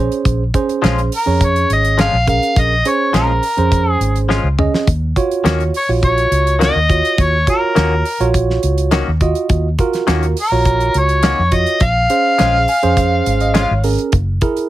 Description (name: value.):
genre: straight-eighth soul blues.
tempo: 104 BPM.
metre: 4/4.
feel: straight.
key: Bb minor.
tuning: A4 = 440 Hz.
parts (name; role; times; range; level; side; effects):
tine electric piano; accompaniment; 0.0-14.7 s; Db4 to Ab5; -19 LUFS; right 5 dB; none.
vintage muted fingered electric bass; bass; 0.0-14.4 s; Gb1 to F2; -17 LUFS; equal; none.
damped 70s drum kit; drums; 0.1-14.7 s; hi-hat, kick drum, snare drum, toms; -18 LUFS; equal; none.
direct-recorded clean electric guitar; stabs; 0.8-13.7 s; Eb3 to Gb4; -19 LUFS; left 5 dB; wide subtle chorus.
mellow harmonica; melody; 1.2-13.8 s; Bb4 to F5; -16 LUFS; left 1 dB; overdrive.
room: light reverb.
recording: none.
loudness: -12 LUFS.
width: side -14 dB against mid.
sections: 0.0-14.7 A section.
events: tine electric piano fill 0.0, 12.4-14.1; drum fill 4.3-4.9.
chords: 0.0 Bbm7; 4.9 Ebm7; 11.8 Bbm7; 14.1 Gb7.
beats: | 0.25 0.83 1.41 1.98 | 2.56 3.14 3.72 4.29 | 4.87 5.45 6.03 6.61 | 7.19 7.76 8.34 8.92 | 9.50 10.08 10.66 11.24 | 11.81 12.39 12.97 13.55 | 14.13.